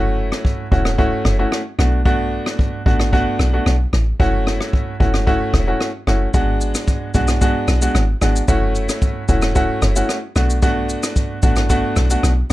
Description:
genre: afrobeats.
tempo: 112 BPM.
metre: 4/4.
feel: straight.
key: F# minor.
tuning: A4 = 440 Hz.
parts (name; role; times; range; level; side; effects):
clear grand piano; accompaniment; 0.0-12.5 s; G#3 to F#4; -20 LUFS; equal; none.
deep log drum bass; bass; 0.0-12.5 s; E1 to B1; -18 LUFS; equal; none.
jazz brush drum kit; drums; 0.3-12.5 s; kick drum, rim click, shaker; -20 LUFS; equal; none.
room: little or no reverb.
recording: none.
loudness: -15 LUFS.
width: side -16 dB against mid.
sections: 0.0-12.5 A section.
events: break 0.0-6.3.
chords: 0.0 F#m7; 1.8 Bm7; 4.2 F#m7; 6.3 G#m7b5; 8.5 F#m7; 10.4 Bm7.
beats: 0.45 0.98 1.52 | 2.06 2.59 3.13 3.66 | 4.20 4.73 5.27 5.80 | 6.34 6.88 7.41 7.95 | 8.48 9.02 9.55 10.09 | 10.63 11.16 11.70 12.23.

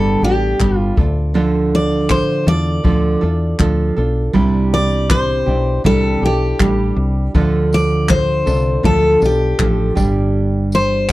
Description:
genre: acoustic pop.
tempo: 80 BPM.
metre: 4/4.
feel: straight.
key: unclear.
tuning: A4 = 440 Hz.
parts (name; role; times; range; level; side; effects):
picked steel-string acoustic guitar; melody; 0.0-11.1 s; G4 to D5; -18 LUFS; left 2 dB; none.
nylon-string guitar; accompaniment; 0.0-11.1 s; G2 to A4; -18 LUFS; right 3 dB; none.
woody fretless electric bass; bass; 0.0-11.1 s; G1 to E2; -18 LUFS; equal; none.
unplugged drum kit; drums; 0.6-11.1 s; handclaps, kick drum, tambourine; -20 LUFS; equal; none.
room: little or no reverb.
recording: none.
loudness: -13 LUFS.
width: side -17 dB against mid.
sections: 0.0-11.1 A section.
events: none.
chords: 0.0 G; 1.0 Dm; 4.3 Cadd9; 7.3 Dm; 10.0 G5.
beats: 0.60 | 1.35 2.10 2.85 3.60 | 4.35 5.10 5.85 6.60 | 7.35 8.10 8.84 9.59 | 10.34 11.09.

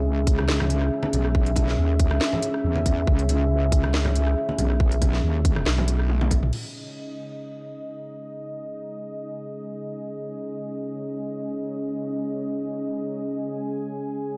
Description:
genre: deep dubstep.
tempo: 139 BPM.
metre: 4/4.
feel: swing 54% on 16ths, half-time.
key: C# minor.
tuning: A4 = 442 Hz.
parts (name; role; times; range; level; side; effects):
dark analog pad; sustained chords; 0.0-14.4 s; C#4 to G#5; -31 LUFS; equal; chorus.
wobble bass; bass; 0.0-6.5 s; B1 to E2; -25 LUFS; equal; chorus.
electronic kick drum; drums; 0.3-6.4 s; none; -24 LUFS; equal; none.
garage drum kit; drums; 0.3-6.6 s; crash cymbal, hi-hat, rim click, snare drum, toms; -32 LUFS; equal; none.
congas; percussion; 0.4-6.4 s; none; -35 LUFS; equal; dub echo.
room: light reverb.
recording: dry, gritty hardware recording, cassette tape.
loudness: -24 LUFS.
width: mono.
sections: 0.0-6.5 A section; 6.5-14.4 B section.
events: drum fill 6.1-6.5.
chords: 0.0 C#5.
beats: 0.05 0.48 0.92 | 1.35 1.78 2.21 2.64 | 3.08 3.51 3.94 4.37 | 4.80 5.23 5.67 6.10 | 6.53 6.96 7.39 7.82 | 8.26 8.69 9.12 9.55 | 9.98 10.41 10.85 11.28 | 11.71 12.14 12.57 13.00 | 13.44 13.87 14.30.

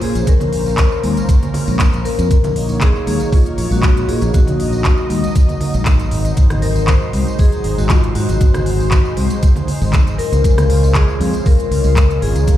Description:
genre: nu-disco, nu disco.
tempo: 118 BPM.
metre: 4/4.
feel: swing 53% on 16ths.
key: unclear.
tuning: A4 = 440 Hz.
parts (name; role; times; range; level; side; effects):
vibraphone with medium hard mallets; melody; 0.0-12.6 s; F4 to C5; -22 LUFS; left 4 dB; tape echo.
lush unison pad; sustained chords; 0.0-12.6 s; Gb3 to Eb5; -24 LUFS; equal; chorus, sidechain pumping.
fingered electric bass; bass; 0.0-12.6 s; Ab1 to Bb2; -17 LUFS; equal; sidechain pumping.
pop drum kit; drums; 0.0-12.6 s; handclaps, hi-hat, rim click; -25 LUFS; equal; none.
tambourine and congas; percussion; 0.2-12.6 s; none; -25 LUFS; right 2 dB; none.
electronic kick drum; drums; 0.3-12.6 s; none; -12 LUFS; equal; none.
room: digital ambience.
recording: played on a big sound system in a bare room, large studio reverb.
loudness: -12 LUFS.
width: side -12 dB against mid.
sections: 0.0-12.6 A section.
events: none.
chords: 0.0 Bbm9; 2.3 Ebm7/Bb; 6.1 Ab7; 10.2 Dbmaj7.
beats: | 0.27 0.78 1.29 1.80 | 2.31 2.82 3.33 3.83 | 4.34 4.85 5.36 5.87 | 6.38 6.88 7.39 7.90 | 8.41 8.92 9.43 9.94 | 10.44 10.95 11.46 11.97 | 12.48.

